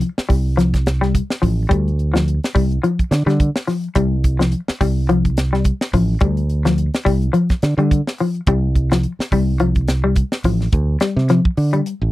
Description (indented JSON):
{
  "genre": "afrobeat",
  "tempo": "106 BPM",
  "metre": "4/4",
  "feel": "swing 56% on 16ths",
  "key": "D minor",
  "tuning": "A4 = 440 Hz",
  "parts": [
    { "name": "semi-hollow electric guitar", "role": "arpeggios", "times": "0.0-11.9 s", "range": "F3 to G3", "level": "-18 LUFS", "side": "left 3 dB", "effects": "analog chorus" },
    { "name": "fingered electric bass", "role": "bass", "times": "0.0-12.1 s", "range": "A1 to D3", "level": "-17 LUFS", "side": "right 1 dB", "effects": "none" },
    { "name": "tight funk drum kit", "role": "drums", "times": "0.0-12.0 s", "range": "hi-hat, kick drum, snare drum", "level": "-19 LUFS", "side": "right 1 dB", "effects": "none" }
  ],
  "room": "little or no reverb",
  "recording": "dry, close 1970s-style studio recording",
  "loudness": "-15 LUFS",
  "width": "side -17 dB against mid",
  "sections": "0.0-10.7 A section; 10.7-12.1 B section",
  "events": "none",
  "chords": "0.0 Dm7"
}